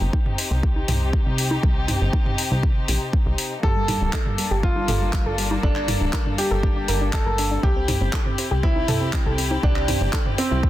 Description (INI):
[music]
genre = progressive house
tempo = 120 BPM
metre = 4/4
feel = straight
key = unclear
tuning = A4 = 441 Hz
[part]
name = warm chamber string section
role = sustained chords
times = 0.0-10.7 s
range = C3 to A4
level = -29 LUFS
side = left 2 dB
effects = sidechain pumping, low-pass filter
[part]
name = plucky analog bass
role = bass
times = 0.0-10.7 s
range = D1 to C2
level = -24 LUFS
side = equal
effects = sidechain pumping
[part]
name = electronic kick drum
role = drums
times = 0.1-10.7 s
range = none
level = -22 LUFS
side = equal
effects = none
[part]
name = electronic congas and toms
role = percussion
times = 0.1-10.4 s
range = none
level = -28 LUFS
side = right 1 dB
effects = sidechain pumping on toms, sidechain pumping on perc
[part]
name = deep house drum kit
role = drums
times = 0.4-10.5 s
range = handclaps, hi-hat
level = -28 LUFS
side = left 2 dB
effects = overdrive
[part]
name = clear baby grand piano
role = melody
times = 3.6-10.7 s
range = C4 to A4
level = -26 LUFS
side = right 1 dB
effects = sidechain pumping, tape echo
[part]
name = soft round pluck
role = arpeggios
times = 3.6-10.7 s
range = G3 to Bb4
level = -29 LUFS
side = equal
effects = chorus, sidechain pumping, tape echo
[sound]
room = light reverb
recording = dense, heavily limited modern master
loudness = -19 LUFS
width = side -14 dB against mid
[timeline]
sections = 0.0-10.7 A section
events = none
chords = 0.0 Cm; 3.6 Gmadd9; 7.6 C